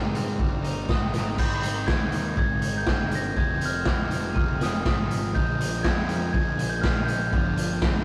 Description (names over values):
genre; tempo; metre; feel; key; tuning
indie rock; 121 BPM; 4/4; straight; unclear; A4 = 439 Hz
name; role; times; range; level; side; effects
glockenspiel with rubber mallets; melody; 0.0-8.0 s; Eb6 to Bb6; -33 LUFS; equal; none
cranked stack guitar; riff; 0.0-8.0 s; F2 to Eb4; -36 LUFS; equal; overdrive
twelve-string electric guitar; riff; 0.0-8.0 s; F3 to Ab4; -39 LUFS; equal; none
fuzz picked electric bass; bass; 0.0-8.0 s; F1 to Ab2; -34 LUFS; equal; overdrive
raw garage drum kit; drums; 0.1-7.9 s; crash cymbal, hi-hat, kick drum, snare drum; -27 LUFS; equal; none
room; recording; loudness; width
moderate studio ambience, RT60 0.5 s; rough rehearsal-room recording, warm saturation; -25 LUFS; mono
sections
0.0-1.4 A section; 1.4-8.0 B section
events
none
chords
0.0 Abmaj7; 3.4 Fm7; 5.3 Bb7sus4; 7.3 G7sus4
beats
0.39 0.89 | 1.38 1.88 2.38 2.87 | 3.37 3.86 4.36 4.85 | 5.35 5.84 6.34 6.83 | 7.33 7.82